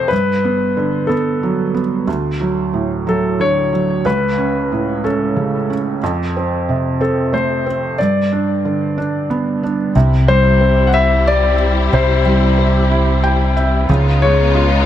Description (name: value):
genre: pop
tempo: 61 BPM (dotted quarters)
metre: 6/8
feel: straight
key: unclear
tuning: A4 = 440 Hz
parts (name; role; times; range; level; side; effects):
- clear grand piano; melody; 0.0-14.8 s; A4 to F#5; -19 LUFS; left 4 dB; tape echo
- felt-muted upright piano; accompaniment; 0.0-14.9 s; C#2 to G5; -17 LUFS; right 3 dB; none
- warm studio string section; sustained chords; 10.0-14.9 s; C#3 to E#4; -20 LUFS; left 4 dB; none
- fingered electric bass; bass; 10.0-14.9 s; C2 to C#2; -15 LUFS; equal; none
room: light reverb, studio reverb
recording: none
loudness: -13 LUFS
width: side -11 dB against mid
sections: 0.0-10.0 A section; 10.0-14.9 B section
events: felt piano fill 12.9-13.9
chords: 0.1 Gmaj7; 2.1 D; 4.0 Aadd9/C#; 6.0 F; 8.0 G; 10.0 C; 13.9 C#7